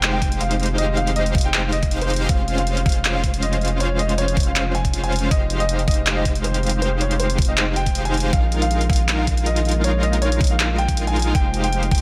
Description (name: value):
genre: future bass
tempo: 159 BPM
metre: 4/4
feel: swing 54% on 16ths, half-time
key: F minor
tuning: A4 = 440 Hz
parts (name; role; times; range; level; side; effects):
- clear baby grand piano; melody; 0.0-12.0 s; C5 to Ab5; -29 LUFS; equal; sidechain pumping, delay
- ethereal airy pad; sustained chords; 0.0-12.0 s; Db3 to C5; -35 LUFS; equal; none
- big bright polysynth; riff; 0.0-12.0 s; Ab3 to F5; -27 LUFS; equal; chorus, sidechain pumping
- saturated sub bass; bass; 0.0-12.0 s; F1 to Bb1; -25 LUFS; equal; sidechain pumping
- big-room dance drum kit; drums; 0.0-12.0 s; handclaps, hi-hat; -28 LUFS; equal; none
- electronic kick drum; drums; 0.2-12.0 s; none; -22 LUFS; equal; none
room: digital ambience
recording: none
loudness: -20 LUFS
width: mono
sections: 0.0-12.0 A section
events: none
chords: 0.0 Fm9; 2.3 Dbmaj7/F; 5.3 Fm9; 8.3 Bb7sus4; 11.3 Fm9